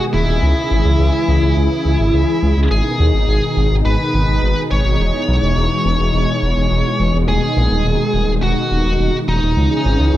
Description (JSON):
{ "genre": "synthwave", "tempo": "105 BPM", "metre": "4/4", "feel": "straight", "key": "G# minor", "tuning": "A4 = 440 Hz", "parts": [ { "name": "high-gain lead guitar", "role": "melody", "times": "0.0-10.2 s", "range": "D#4 to C#5", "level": "-20 LUFS", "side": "equal", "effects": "distortion, tape echo" }, { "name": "warm analog pad", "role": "sustained chords", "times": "0.0-10.2 s", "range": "B2 to G#4", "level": "-19 LUFS", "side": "equal", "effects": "chorus" }, { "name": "dark detuned saw bass", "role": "bass", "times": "0.1-10.2 s", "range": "D#1 to D#2", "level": "-16 LUFS", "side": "equal", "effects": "none" } ], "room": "light reverb", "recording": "dark, warm production", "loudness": "-13 LUFS", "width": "side -13 dB against mid", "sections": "0.0-10.2 A section", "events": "none", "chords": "0.4 C#m; 2.7 G#m; 5.0 Emaj7; 7.3 G#m/D#; 9.6 C#m" }